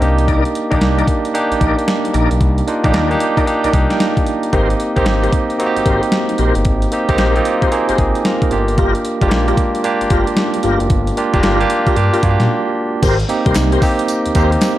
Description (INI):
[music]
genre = R&B, new jack swing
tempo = 113 BPM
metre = 4/4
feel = swing 64% on 16ths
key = C minor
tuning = A4 = 440 Hz
[part]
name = barky tine electric piano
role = accompaniment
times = 0.0-14.8 s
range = Ab3 to Bb5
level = -16 LUFS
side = right 2 dB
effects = medium stereo tremolo
[part]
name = smooth synth bass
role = bass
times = 0.0-14.6 s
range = F1 to Bb2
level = -17 LUFS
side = equal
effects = none
[part]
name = clean 12-bit digital drum machine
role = drums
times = 0.0-14.8 s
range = crash cymbal, hi-hat, kick drum, snare drum, tambourine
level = -18 LUFS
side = equal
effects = overdrive
[part]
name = tonewheel organ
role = stabs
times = 0.3-14.5 s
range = Eb4 to D5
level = -22 LUFS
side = left 2 dB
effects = overdrive, chorus vibrato, fast rotary speaker, tape echo
[part]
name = group handclap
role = percussion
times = 13.6-14.8 s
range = none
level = -32 LUFS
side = left 8 dB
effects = none
[sound]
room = moderate plate reverb, RT60 2.0 s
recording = dark, warm production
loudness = -13 LUFS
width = side -14 dB against mid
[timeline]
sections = 0.0-13.0 A section; 13.0-14.8 B section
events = tine electric piano fill 3.5-4.5, 7.2-8.8; break 12.5-13.0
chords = 0.0 Cm9; 4.5 Abmaj9; 8.5 Gm7; 13.0 Abmaj9